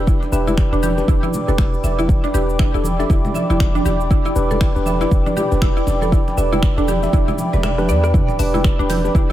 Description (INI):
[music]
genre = afro house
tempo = 119 BPM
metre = 4/4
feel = swing 59% on 16ths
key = E minor pentatonic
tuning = A4 = 440 Hz
[part]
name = dark analog pad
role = sustained chords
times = 0.0-9.3 s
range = D5 to D6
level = -24 LUFS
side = right 2 dB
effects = chorus, sidechain pumping
[part]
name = mallet-like synth pluck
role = arpeggios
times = 0.0-9.3 s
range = D4 to E5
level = -24 LUFS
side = equal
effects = wide subtle chorus, sidechain pumping, diffuse ambient delay
[part]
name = tine electric piano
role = stabs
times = 0.0-9.3 s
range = D4 to E5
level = -24 LUFS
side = left 1 dB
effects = medium stereo tremolo, sidechain pumping, diffuse ambient delay
[part]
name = warm 808-style bass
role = bass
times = 0.0-9.2 s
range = E1 to E2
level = -21 LUFS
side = equal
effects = sidechain pumping
[part]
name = deep house drum kit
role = drums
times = 0.1-9.3 s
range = finger snaps, hi-hat, rim click, shaker, toms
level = -30 LUFS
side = equal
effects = none
[part]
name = electronic kick drum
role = drums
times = 0.1-9.3 s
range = none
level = -17 LUFS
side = equal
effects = none
[part]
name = congas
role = percussion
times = 0.2-9.3 s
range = none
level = -26 LUFS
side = equal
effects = none
[sound]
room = light reverb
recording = none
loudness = -15 LUFS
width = side -13 dB against mid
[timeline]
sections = 0.0-9.3 A section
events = kick drops out 7.6-8.1; drum fill 7.6-8.1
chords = 0.0 Em7